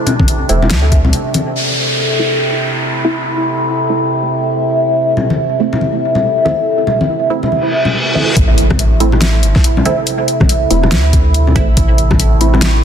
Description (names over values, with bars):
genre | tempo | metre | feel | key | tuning
deep dubstep | 141 BPM | 4/4 | swing 60% on 16ths, half-time | A minor | A4 = 438 Hz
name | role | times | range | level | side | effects
overtone-sweeping drone | sustained chords | 0.0-12.8 s | C3 to E4 | -16 LUFS | equal | chorus, built-in reverb
dubstep drum kit | drums | 0.1-1.4, 8.4-12.7 s | hi-hat, rim click, snare drum | -18 LUFS | left 1 dB | overdrive
congas | percussion | 0.1-1.4, 5.2-12.7 s | none | -19 LUFS | left 3 dB | dub echo
electronic kick drum | drums | 0.2-1.0, 8.4-12.2 s | none | -13 LUFS | equal | overdrive
filtered dub chord stab | stabs | 0.5-12.5 s | A3 to E4 | -20 LUFS | right 3 dB | phaser, dub echo
soft dub sub bass | bass | 0.5-1.1, 8.4-12.8 s | E1 to D2 | -12 LUFS | equal | tube saturation
downlifter, reverse cymbal and impact | sound effects | 1.6-5.0, 7.6-10.1 s | none | -19 LUFS | equal | none
room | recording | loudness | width
light reverb, digital ambience | dense, heavily limited modern master | -11 LUFS | side -8 dB against mid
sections
0.0-1.6 A section; 1.6-8.4 B section; 8.4-12.8 C section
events
break 1.1-1.6; filter sweep on synth stab 1.6-8.4; reverse cymbal 7.6-8.4; drop 8.4-12.8; impact 8.4-10.1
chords
0.0 Am